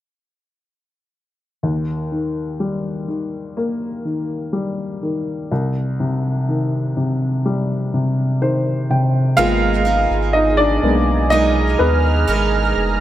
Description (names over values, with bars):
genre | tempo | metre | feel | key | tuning
pop ballad | 62 BPM | 4/4 | straight | Eb major | A4 = 440 Hz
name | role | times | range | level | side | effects
warm upright piano | accompaniment | 1.6-13.0 s | C2 to G5 | -18 LUFS | left 1 dB | none
lush unison pad | sustained chords | 9.4-13.0 s | Ab4 to F6 | -23 LUFS | right 4 dB | chorus
picked steel-string acoustic guitar | arpeggios | 9.4-13.0 s | Ab3 to Bb4 | -24 LUFS | right 8 dB | digital delay
warm sub bass | bass | 9.4-13.0 s | F1 to Eb2 | -19 LUFS | equal | none
room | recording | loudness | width
light reverb, small room reverb | none | -16 LUFS | side -13 dB against mid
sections
1.6-9.4 A section; 9.4-13.0 B section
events
upright piano fill 7.9-9.4; upright piano solo 9.4-13.0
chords
1.6 Eb; 5.5 Cm; 9.4 Abmadd9